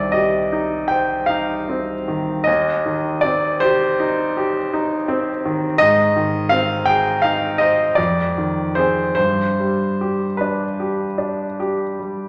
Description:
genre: classical, romantic nocturne for solo piano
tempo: 48-57 BPM (dotted quarters)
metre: 9/8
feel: rubato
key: C minor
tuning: A4 = 437 Hz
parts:
  - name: clear grand piano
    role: solo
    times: 0.0-12.3 s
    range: C2 to G5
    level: -19 LUFS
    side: equal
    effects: none
room: wet recital hall reverb, RT60 1.4 s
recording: none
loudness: -19 LUFS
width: mono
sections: 0.0-12.3 A section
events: none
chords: 0.0 Cm; 2.5 Cm/Eb; 5.8 Ab; 8.0 Fm7; 9.2 G

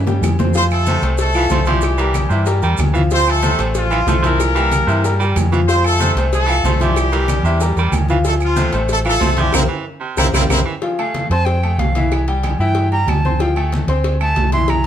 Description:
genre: latin, salsa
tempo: 187 BPM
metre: 4/4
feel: straight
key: F major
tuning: A4 = 438 Hz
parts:
  - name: hollow-body short-scale fingered electric bass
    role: bass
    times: 0.0-14.9 s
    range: A1 to G2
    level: -17 LUFS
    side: equal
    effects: none
  - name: bright concert grand piano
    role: accompaniment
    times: 0.1-14.8 s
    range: E3 to C6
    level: -21 LUFS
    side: left 3 dB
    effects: none
  - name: bongos and cowbell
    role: percussion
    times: 0.1-14.9 s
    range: none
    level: -28 LUFS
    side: left 5 dB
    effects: none
  - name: congas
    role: percussion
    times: 0.1-14.8 s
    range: none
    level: -25 LUFS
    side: left 1 dB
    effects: none
  - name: maracas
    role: percussion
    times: 0.1-10.6 s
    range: none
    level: -34 LUFS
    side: right 7 dB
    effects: none
  - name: timbales and agogo bells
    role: percussion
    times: 0.1-14.9 s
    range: none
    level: -28 LUFS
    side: right 5 dB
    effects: none
  - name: claves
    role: percussion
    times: 0.2-14.9 s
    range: none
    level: -31 LUFS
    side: right 6 dB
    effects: none
  - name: brilliant horn section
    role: melody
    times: 0.6-10.6 s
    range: F3 to C5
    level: -19 LUFS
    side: equal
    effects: none
  - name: raspy baritone saxophone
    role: second line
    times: 0.9-10.7 s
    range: C3 to G3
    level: -24 LUFS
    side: right 6 dB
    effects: none
  - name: bright silver concert flute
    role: melody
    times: 11.0-14.9 s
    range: F5 to C6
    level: -21 LUFS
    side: right 2 dB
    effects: none
room: moderate studio reverb, RT60 0.8 s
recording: none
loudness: -14 LUFS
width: side -10 dB against mid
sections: 0.6-10.8 A section; 10.8-14.9 B section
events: drum fill 0.0-0.6, 9.5-10.8, 14.7; band accent 9.5-10.8; flute solo 10.8-14.9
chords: 0.0 C5; 0.6 F; 1.8 C7; 3.1 Dm7; 4.4 C7; 5.7 F; 7.0 C7; 8.3 Dm7; 9.5 C7; 10.8 F; 12.1 C; 13.4 Dm7

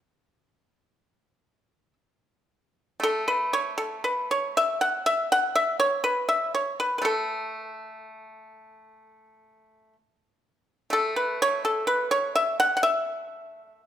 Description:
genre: chinese traditional, Chinese solo plucked strings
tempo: 55-64 BPM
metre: 4/4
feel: rubato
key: unclear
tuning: A4 = 441 Hz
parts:
  - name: pipa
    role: solo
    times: 0.0-13.9 s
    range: A3 to F#5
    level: -23 LUFS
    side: equal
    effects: none
room: moderate recital hall reverb, RT60 1.5 s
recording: minimal, uncompressed stereo recording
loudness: -23 LUFS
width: side -10 dB against mid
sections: 0.0-3.0 A section; 3.0-13.9 B section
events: none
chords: none

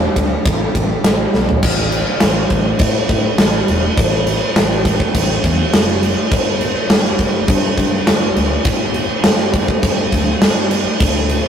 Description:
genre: rock, shoegaze and dream pop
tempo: 102 BPM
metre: 4/4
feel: straight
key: unclear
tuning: A4 = 435 Hz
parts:
  - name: growling fingered electric bass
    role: bass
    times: 0.0-11.4 s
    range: E1 to A2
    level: -20 LUFS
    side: equal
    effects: overdrive
  - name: huge arena drum kit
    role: drums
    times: 0.2-11.4 s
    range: crash cymbal, kick drum, ride cymbal, snare drum, toms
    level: -14 LUFS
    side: equal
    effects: none
room: moderate studio reverb, RT60 0.5 s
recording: rough rehearsal-room recording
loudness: -13 LUFS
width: side -8 dB against mid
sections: 0.0-1.6 A section; 1.6-11.5 B section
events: drum fill 1.3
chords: none

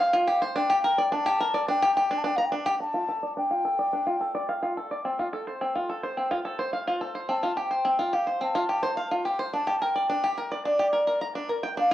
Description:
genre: folktronica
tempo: 107 BPM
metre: 4/4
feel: straight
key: unclear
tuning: A4 = 442 Hz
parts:
  - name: mellow hollow baroque flute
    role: melody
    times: 0.0-11.9 s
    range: D5 to A5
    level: -25 LUFS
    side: left 1 dB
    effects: vintage 12-bit sampler grit, cassette tape
  - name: bluegrass banjo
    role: arpeggios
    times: 0.0-11.9 s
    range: C4 to Bb5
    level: -28 LUFS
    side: equal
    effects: low-pass filter, cassette tape, analog delay
room: light reverb, studio ambience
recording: home recording on cassette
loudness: -24 LUFS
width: side -13 dB against mid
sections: 0.0-2.8 A section; 2.8-11.8 B section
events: filter sweep on five-string banjo 2.8-11.8; break 11.2-11.8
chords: 0.0 Csus4; 0.6 Gm; 2.8 Dm; 5.1 F; 7.3 Csus4; 9.5 Gm

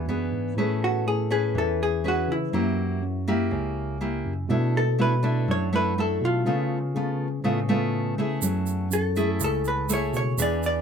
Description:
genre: bossa nova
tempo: 122 BPM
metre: 4/4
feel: straight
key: unclear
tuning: A4 = 440 Hz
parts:
  - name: vintage hollow-body jazz guitar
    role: melody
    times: 0.0-10.8 s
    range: E4 to D5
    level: -27 LUFS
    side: left 1 dB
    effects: none
  - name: nylon-string guitar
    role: accompaniment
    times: 0.0-10.8 s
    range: B2 to B4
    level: -26 LUFS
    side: equal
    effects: none
  - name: bright tine electric piano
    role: bass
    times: 0.0-10.8 s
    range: C#2 to C#3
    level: -28 LUFS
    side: right 1 dB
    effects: medium stereo tremolo
  - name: egg shaker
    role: percussion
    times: 8.4-10.8 s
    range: none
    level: -32 LUFS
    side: right 9 dB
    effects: none
room: light reverb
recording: minimal, uncompressed stereo recording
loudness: -22 LUFS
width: side -7 dB against mid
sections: 0.6-10.8 A section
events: none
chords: 0.0 E7; 0.6 Amaj9; 2.5 F#7b9; 4.5 Bm7; 6.5 C#7b13; 8.4 F#m9

